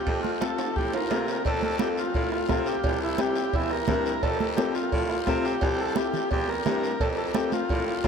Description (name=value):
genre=latin, cumbia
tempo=173 BPM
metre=4/4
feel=straight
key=F major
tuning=A4 = 442 Hz
part: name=combo organ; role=melody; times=0.0-8.1 s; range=E4 to Bb4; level=-28 LUFS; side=equal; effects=diffuse ambient delay
part: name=bright baritone saxophone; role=bass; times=0.1-8.1 s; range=C2 to C3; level=-32 LUFS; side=equal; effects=none
part: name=bombo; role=percussion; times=0.1-8.1 s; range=none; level=-32 LUFS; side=right 1 dB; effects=none
part: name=congas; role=percussion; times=0.1-8.1 s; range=none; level=-34 LUFS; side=right 7 dB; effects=none
part: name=guiro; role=percussion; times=0.1-8.1 s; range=none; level=-41 LUFS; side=left 9 dB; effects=none
part: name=timbales and cowbell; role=percussion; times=0.1-8.1 s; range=none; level=-37 LUFS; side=right 6 dB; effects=none
part: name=dark upright piano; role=accompaniment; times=0.4-8.1 s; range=C4 to Bb4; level=-31 LUFS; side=left 6 dB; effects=none
room=wet huge ambient reverb, RT60 8.0 s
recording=dreamy mix soaked in reverb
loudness=-24 LUFS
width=side -6 dB against mid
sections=0.0-1.4 A section; 1.4-8.1 A section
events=drum fill 0.6-1.4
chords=0.0 F; 2.8 C7; 4.2 F; 5.6 C7; 7.0 F